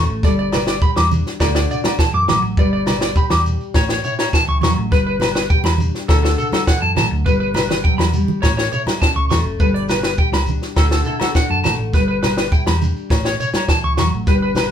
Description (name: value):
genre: highlife guitar band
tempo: 103 BPM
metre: 4/4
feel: straight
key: unclear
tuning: A4 = 440 Hz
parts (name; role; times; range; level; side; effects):
- nylon-string guitar; accompaniment; 0.0-14.7 s; A2 to C#5; -24 LUFS; left 3 dB; none
- electric guitar at the edge of break-up; arpeggios; 0.0-14.7 s; A4 to D6; -21 LUFS; equal; none
- hollow-body short-scale fingered electric bass; bass; 0.0-14.7 s; F#1 to F#2; -21 LUFS; equal; none
- shekere; percussion; 0.1-14.7 s; none; -30 LUFS; right 1 dB; none
- compact cocktail drum kit; drums; 0.2-14.7 s; kick drum, snare drum; -18 LUFS; equal; none
- agogo bells; percussion; 0.5-14.7 s; none; -29 LUFS; left 1 dB; none
- congas; percussion; 0.5-14.7 s; none; -26 LUFS; right 4 dB; none
room: moderate studio reverb, RT60 0.5 s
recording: band playing live in one room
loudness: -15 LUFS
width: side -9 dB against mid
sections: 0.0-14.7 A section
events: drum fill 8.0-8.4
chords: 0.2 G; 1.4 D; 2.6 G; 3.8 A; 4.9 G; 6.1 D; 7.3 G; 8.4 A; 9.6 G; 10.8 D; 11.9 G; 13.1 A